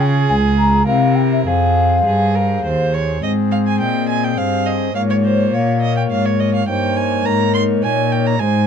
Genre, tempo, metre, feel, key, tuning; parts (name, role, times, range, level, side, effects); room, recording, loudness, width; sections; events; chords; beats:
classical, baroque-style sonata movement with continuo; 104 BPM; 3/4; straight; F minor, Ab major from 3.2 s; A4 = 442 Hz
mellow baroque flute; melody; 0.0-8.7 s; Bb4 to Bb5; -20 LUFS; left 3 dB
rich violin; second line; 0.0-8.7 s; Ab4 to C6; -22 LUFS; right 6 dB
pipe organ, foundations; accompaniment; 0.0-8.7 s; Db2 to Db5; -19 LUFS; left 4 dB
rich cello; bass; 0.0-8.7 s; Db2 to Db3; -18 LUFS; right 1 dB
moderate small room reverb, RT60 0.5 s; dark, warm production; -14 LUFS; side -7 dB against mid
0.0-3.2 A section; 3.2-8.7 A section
0.0 Db; 0.9 C; 1.5 Fm; 3.2 Ab; 5.0 Bbm7/Ab; 6.7 Eb7/G
0.29 0.87 | 1.46 2.05 2.64 | 3.23 3.81 4.38 | 4.95 5.53 6.11 | 6.68 7.25 7.83 | 8.40